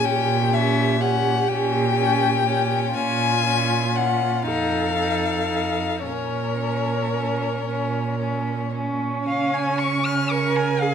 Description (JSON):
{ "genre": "classical, slow romantic movement for string quartet", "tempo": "36-42 BPM (dotted quarters)", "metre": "6/8", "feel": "rubato", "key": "Bb minor", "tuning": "A4 = 445 Hz", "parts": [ { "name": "rich violin", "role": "melody", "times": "0.0-10.9 s", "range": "Db5 to Ab5", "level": "-24 LUFS", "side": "left 10 dB", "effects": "none" }, { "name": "rich violin", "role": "second line", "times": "0.0-10.9 s", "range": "Db4 to F6", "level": "-26 LUFS", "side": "left 1 dB", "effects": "none" }, { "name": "warm viola", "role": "accompaniment", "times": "0.0-10.9 s", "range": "Db4 to Bb4", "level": "-26 LUFS", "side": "right 3 dB", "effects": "none" }, { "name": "warm cello", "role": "bass", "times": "0.0-10.9 s", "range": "F2 to Db3", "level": "-25 LUFS", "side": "right 4 dB", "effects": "none" } ], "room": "moderate recital hall reverb, RT60 1.4 s", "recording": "none", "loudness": "-20 LUFS", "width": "side -7 dB against mid", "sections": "0.0-9.3 A section; 9.3-10.9 B section", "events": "none", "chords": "0.0 Bbm; 4.5 F7; 6.1 Bbm; 9.3 Db" }